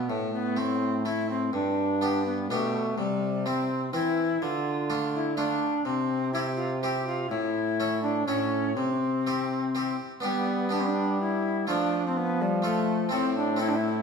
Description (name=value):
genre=classical, renaissance-style consort dance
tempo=124 BPM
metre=3/4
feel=straight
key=G mixolydian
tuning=A4 = 440 Hz
part: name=bass recorder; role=melody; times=0.0-14.0 s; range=G3 to G4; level=-28 LUFS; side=left 1 dB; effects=none
part: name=harpsichord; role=accompaniment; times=0.0-14.0 s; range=G2 to A4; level=-32 LUFS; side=equal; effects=none
part: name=clear trombone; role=bass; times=0.0-14.0 s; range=G2 to G3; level=-31 LUFS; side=right 1 dB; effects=none
room=wet stone room reverb, RT60 1.3 s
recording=heard from further back in the room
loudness=-25 LUFS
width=side -5 dB against mid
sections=0.0-10.2 A section; 10.2-14.0 B section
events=none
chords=0.1 Am; 1.5 G; 3.0 C; 4.4 Dm; 5.9 C; 7.3 A; 8.8 C; 10.2 G; 11.7 F6; 13.1 Am